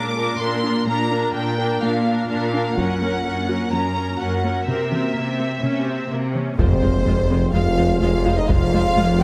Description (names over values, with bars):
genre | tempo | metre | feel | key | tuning
cinematic, hybrid orchestral and electronic film score | 126 BPM | 4/4 | straight | unclear | A4 = 440 Hz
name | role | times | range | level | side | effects
rich symphonic violin section | melody | 0.0-9.1 s | C5 to D6 | -30 LUFS | equal | none
clear symphonic viola section | accompaniment | 0.0-9.2 s | Ab3 to Bb4 | -29 LUFS | equal | none
ethereal airy pad | sustained chords | 0.0-9.2 s | Ab3 to C5 | -31 LUFS | equal | ensemble chorus, built-in reverb
soft round pluck | arpeggios | 0.0-9.1 s | C3 to Bb4 | -31 LUFS | equal | none
rich symphonic cello section | bass | 0.0-9.2 s | F2 to C3 | -27 LUFS | equal | none
taiko ensemble | drums | 2.8-3.7, 6.6-8.9 s | none | -25 LUFS | equal | none
clear symphonic violin section | second line | 6.6-9.2 s | C5 to F5 | -29 LUFS | equal | none
mellow French horn section | sustained chords | 6.6-9.2 s | C4 to G4 | -25 LUFS | equal | none
warm trombone section | sustained chords | 6.6-9.2 s | F3 to Ab3 | -32 LUFS | equal | none
chorused synth bass | riff | 6.6-9.2 s | F2 to F3 | -26 LUFS | equal | none
clear symphonic double bass section | bass | 6.6-9.2 s | F1 | -29 LUFS | equal | none
clear tuba | bass | 6.6-9.2 s | F1 | -28 LUFS | equal | none
pure sine sub bass | bass | 6.6-9.2 s | F1 | -29 LUFS | equal | none
impact | sound effects | 6.6-8.5 s | none | -31 LUFS | equal | none
room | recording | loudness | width
light reverb | close, detailed microphones | -20 LUFS | mono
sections
0.0-6.6 A section; 6.6-9.2 B section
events
impact 6.6-8.5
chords
0.0 Bb; 2.8 Gb; 4.7 C7; 6.6 Fm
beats
0.40 | 0.87 1.35 1.83 2.30 | 2.78 3.25 3.73 4.21 | 4.68 5.16 5.64 6.11 | 6.59 7.07 7.54 8.02 | 8.49 8.97